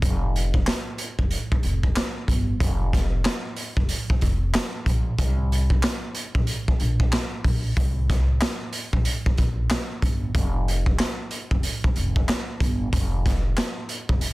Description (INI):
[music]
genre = hip hop, boom-bap hip-hop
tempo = 93 BPM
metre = 4/4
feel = swing 61% on 16ths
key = unclear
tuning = A4 = 440 Hz
[part]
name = upright bass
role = bass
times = 0.0-14.2 s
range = F1 to C2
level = -24 LUFS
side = equal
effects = none
[part]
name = raw garage drum kit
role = drums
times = 0.0-14.3 s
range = handclaps, hi-hat, kick drum, snare drum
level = -23 LUFS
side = equal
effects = none
[sound]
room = little or no reverb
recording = dense, heavily limited modern master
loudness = -21 LUFS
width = side -20 dB against mid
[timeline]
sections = 0.0-14.3 A section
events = none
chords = none